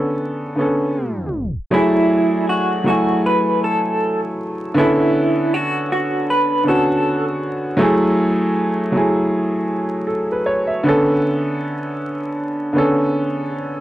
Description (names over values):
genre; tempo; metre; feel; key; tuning
hip hop; 79 BPM; 4/4; swing 59% on 16ths; F# minor; A4 = 440 Hz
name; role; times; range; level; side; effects
warm upright piano; accompaniment; 0.0-13.8 s; D3 to G#5; -17 LUFS; equal; low-pass filter
electric guitar through a small old amp; melody; 1.7-7.2 s; E4 to B4; -18 LUFS; equal; tremolo, low-pass filter
room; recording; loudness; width
moderate small room reverb, RT60 0.6 s; dry, gritty hardware recording, vinyl crackle, tape stop; -16 LUFS; side -14 dB against mid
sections
0.0-1.7 A section; 1.7-13.8 B section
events
tape stop 1.0-1.7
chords
0.0 Bm9; 1.7 F#m9; 4.8 Bm9; 7.8 F#m9; 10.8 Bm9